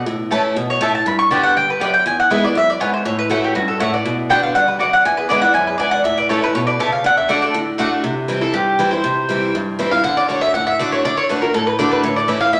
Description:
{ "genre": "bluegrass", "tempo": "240 BPM", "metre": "4/4", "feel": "straight", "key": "D major", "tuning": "A4 = 438 Hz", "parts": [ { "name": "picked steel-string acoustic guitar", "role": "accompaniment", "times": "0.0-12.6 s", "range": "E2 to G4", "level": "-23 LUFS", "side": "equal", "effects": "none" }, { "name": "mandolin", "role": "stabs", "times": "0.3-12.6 s", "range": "A3 to A5", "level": "-22 LUFS", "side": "equal", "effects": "none" }, { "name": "mandolin", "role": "melody", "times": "0.7-7.8 s", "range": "F#4 to C#6", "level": "-18 LUFS", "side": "equal", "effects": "none" }, { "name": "lap resonator guitar", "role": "second line", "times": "3.6-7.8 s", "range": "C#4 to E5", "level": "-28 LUFS", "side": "equal", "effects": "none" } ], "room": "wet large studio reverb, RT60 1.2 s", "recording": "none", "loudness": "-17 LUFS", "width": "mono", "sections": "0.1-8.0 A section; 8.0-12.6 B section", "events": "mandolin solo 8.0-12.6", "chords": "0.1 A; 1.1 G; 2.1 E; 3.1 A6; 4.1 Bm; 5.1 E7; 6.1 A; 7.0 D; 8.0 C; 10.0 D; 12.0 A" }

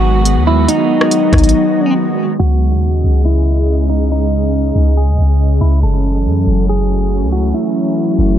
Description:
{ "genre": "hip hop, atmospheric cloud-rap", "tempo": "140 BPM", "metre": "4/4", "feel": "half-time", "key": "C# minor", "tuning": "A4 = 440 Hz", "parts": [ { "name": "clean electric guitar", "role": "melody", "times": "0.0-8.4 s", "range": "D#4 to A4", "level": "-18 LUFS", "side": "left 1 dB", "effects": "phaser, tape echo" }, { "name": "glassy FM pad", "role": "sustained chords", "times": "0.0-8.4 s", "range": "C#3 to D#5", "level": "-16 LUFS", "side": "right 1 dB", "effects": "ensemble chorus, built-in reverb, sidechain pumping" }, { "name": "clean 808-style bass", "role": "bass", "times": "0.0-8.4 s", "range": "F#1 to F#2", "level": "-13 LUFS", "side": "equal", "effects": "none" }, { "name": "smooth R&B drum kit", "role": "drums", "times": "0.3-1.5 s", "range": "hi-hat, kick drum, rim click", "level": "-18 LUFS", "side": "equal", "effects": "none" } ], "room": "little or no reverb", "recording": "low-pass filter", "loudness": "-11 LUFS", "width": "side -10 dB against mid", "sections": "0.0-2.4 A section; 2.4-8.4 B section", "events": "break 1.5-2.4", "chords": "0.0 G#m7; 2.4 C#madd9; 5.8 F#m7" }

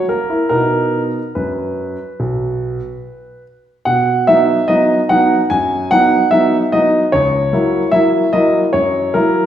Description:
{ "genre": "classical-period piano sonatina", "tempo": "74 BPM", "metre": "4/4", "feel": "straight", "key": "B major", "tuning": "A4 = 439 Hz", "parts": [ { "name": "clear concert grand piano", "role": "solo", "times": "0.0-9.5 s", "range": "B1 to G#5", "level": "-12 LUFS", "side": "equal", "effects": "none" } ], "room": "wet recital hall reverb, RT60 1.4 s", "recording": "heard from further back in the room", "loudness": "-12 LUFS", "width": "side -10 dB against mid", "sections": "0.0-3.9 A section; 3.9-9.5 B section", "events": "none", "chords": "0.0 F#7; 0.5 B; 7.1 F#7/C#" }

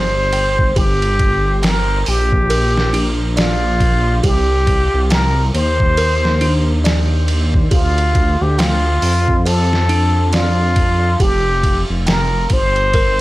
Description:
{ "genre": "trip hop", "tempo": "69 BPM", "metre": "4/4", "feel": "swing 60% on 16ths", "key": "G minor", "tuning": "A4 = 442 Hz", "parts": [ { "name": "trumpet with plunger mute", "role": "melody", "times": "0.0-13.2 s", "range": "F4 to C5", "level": "-18 LUFS", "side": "equal", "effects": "tape echo" }, { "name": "music box", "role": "arpeggios", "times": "0.0-13.2 s", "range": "D4 to G5", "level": "-26 LUFS", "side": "right 1 dB", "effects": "tape echo" }, { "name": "dark detuned saw bass", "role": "bass", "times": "0.0-13.2 s", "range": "F1 to F2", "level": "-16 LUFS", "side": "equal", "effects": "none" }, { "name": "trip hop sampler-style drum kit", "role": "drums", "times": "0.3-13.2 s", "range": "hi-hat, kick drum, ride cymbal, snare drum", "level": "-18 LUFS", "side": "equal", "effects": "none" } ], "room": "digital ambience", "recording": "dry, gritty hardware recording, vinyl crackle", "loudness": "-13 LUFS", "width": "side -17 dB against mid", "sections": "0.0-13.2 A section", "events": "none", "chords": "0.0 Fsus2 (rootless); 0.8 Gm; 4.2 Cm; 7.7 Dmadd11; 11.2 Fsus2" }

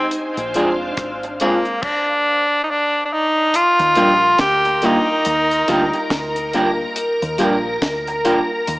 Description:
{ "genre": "lovers rock reggae", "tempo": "70 BPM", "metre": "4/4", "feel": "swing 59% on 16ths", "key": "Eb major", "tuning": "A4 = 440 Hz", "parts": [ { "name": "bright tenor saxophone", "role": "melody", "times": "0.0-6.5 s", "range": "Bb3 to G4", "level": "-17 LUFS", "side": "equal", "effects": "tape echo" }, { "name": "soft string machine", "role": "second line", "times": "0.0-8.8 s", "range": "D4 to Bb5", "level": "-24 LUFS", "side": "equal", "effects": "ensemble chorus, dub echo" }, { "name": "deep reggae drum kit", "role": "drums", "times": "0.1-8.8 s", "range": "crash cymbal, hi-hat, kick drum, rim click, snare drum", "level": "-25 LUFS", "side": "equal", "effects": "none" }, { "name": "deep dub fingered electric bass", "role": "bass", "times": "0.4-8.8 s", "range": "F1 to Eb2", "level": "-31 LUFS", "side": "equal", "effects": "none" }, { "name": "FM electric piano with soft pad layer", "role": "accompaniment", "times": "0.6-8.6 s", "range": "G3 to F4", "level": "-22 LUFS", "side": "equal", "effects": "chorus, phaser" }, { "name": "electric guitar through a small old amp", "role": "stabs", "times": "0.6-8.4 s", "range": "F3 to Ab4", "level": "-22 LUFS", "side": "right 1 dB", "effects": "none" } ], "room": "moderate plate reverb, RT60 2.5 s", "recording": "small speaker sound", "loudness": "-15 LUFS", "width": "side -21 dB against mid", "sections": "0.0-3.5 A section; 3.5-8.8 B section", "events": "none", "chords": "0.1 Bb9 (rootless); 3.5 Ebmaj9" }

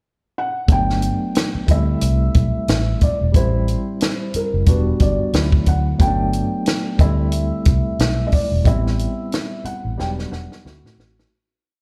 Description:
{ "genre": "lush 1970s-style soul", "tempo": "90 BPM", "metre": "4/4", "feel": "swing 58% on 16ths", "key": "unclear", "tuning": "A4 = 441 Hz", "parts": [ { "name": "felt-muted upright piano", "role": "melody", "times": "0.4-10.9 s", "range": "Bb4 to G5", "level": "-28 LUFS", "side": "equal", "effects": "slapback echo" }, { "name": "barky tine electric piano", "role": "accompaniment", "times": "0.7-11.3 s", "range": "F#3 to F#4", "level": "-27 LUFS", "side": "equal", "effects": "medium tremolo, slapback echo" }, { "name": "vintage muted fingered electric bass", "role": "bass", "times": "0.7-11.2 s", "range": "E1 to A2", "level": "-22 LUFS", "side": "equal", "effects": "none" }, { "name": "compact cocktail drum kit", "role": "drums", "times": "0.7-11.3 s", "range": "hi-hat, kick drum, snare drum", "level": "-19 LUFS", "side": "equal", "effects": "none" } ], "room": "small room ambience", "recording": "live gig heard through the venue's PA, club reverb", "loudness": "-19 LUFS", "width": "mono", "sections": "0.0-0.7 pickup bar; 0.7-11.3 verse", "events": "fade-out 8.7-11.3; drum fill 10.0-11.3", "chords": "0.0 N.C.; 0.7 Gmaj9; 1.7 D7sus4; 3.3 Am7; 4.7 Em7; 5.3 D7; 6.0 Gmaj9; 7.0 D7sus4; 8.7 Am7; 10.0 Em7; 10.6 D7" }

